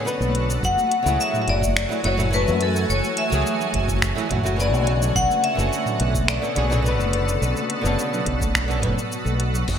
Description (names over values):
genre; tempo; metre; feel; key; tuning
sunset chillout; 106 BPM; 4/4; straight; unclear; A4 = 440 Hz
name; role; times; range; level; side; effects
vibraphone with hard mallets; melody; 0.0-9.1 s; A4 to F#5; -25 LUFS; left 3 dB; digital delay
flamenco guitar; accompaniment; 0.0-9.0 s; C#3 to B4; -28 LUFS; moving between left 5 dB and right 6 dB; auto-pan, digital delay
shimmering ambient pad; sustained chords; 0.0-9.8 s; B2 to G#5; -27 LUFS; right 1 dB; chorus, built-in reverb
smooth R&B drum kit; drums; 0.1-9.8 s; cabasa, crash cymbal, finger snaps, hi-hat, toms; -27 LUFS; equal; none
fingered electric bass with an envelope filter; bass; 0.2-9.8 s; F#1 to F#2; -23 LUFS; equal; none
congas; percussion; 0.2-9.7 s; none; -33 LUFS; left 3 dB; none
electronic kick drum; drums; 0.6-9.8 s; none; -28 LUFS; equal; none
wind-like tuned noise texture; texture; 9.7-9.8 s; none; barely audible; none; none
room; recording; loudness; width
light reverb, digital ambience; bright 1980s-style digital production; -19 LUFS; side -8 dB against mid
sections
0.0-9.8 A section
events
none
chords
0.0 Bm9; 0.6 F#m9; 4.9 Bm9